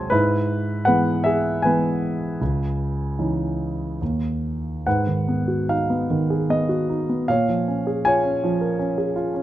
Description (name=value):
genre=classical, lyrical solo piano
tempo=69-82 BPM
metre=3/4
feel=rubato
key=G# dorian from 4.9 s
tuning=A4 = 440 Hz
part: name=dark concert grand piano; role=solo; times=0.0-9.4 s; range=C#2 to B#5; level=-20 LUFS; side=equal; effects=none
room=light reverb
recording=close, detailed microphones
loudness=-20 LUFS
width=side -13 dB against mid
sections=0.0-4.9 A section; 4.9-9.4 B section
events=none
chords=0.1 E/G#; 2.4 C#madd9; 4.0 N.C.; 4.9 G#m7; 7.3 A#m7